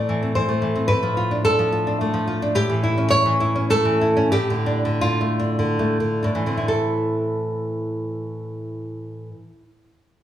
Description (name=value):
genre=romantic piece for solo classical guitar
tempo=65-111 BPM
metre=3/4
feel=rubato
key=A minor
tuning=A4 = 440 Hz
part: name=nylon-string guitar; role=solo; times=0.0-9.7 s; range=A2 to D5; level=-19 LUFS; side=equal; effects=none
room=moderate recital hall reverb, RT60 1.5 s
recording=small room reverb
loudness=-19 LUFS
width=side -11 dB against mid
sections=0.0-6.7 A section; 6.7-10.2 B section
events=slowing down 1.7-6.7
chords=0.0 Am; 0.9 Dm/A; 2.5 A7; 4.3 Dm/A; 6.7 Am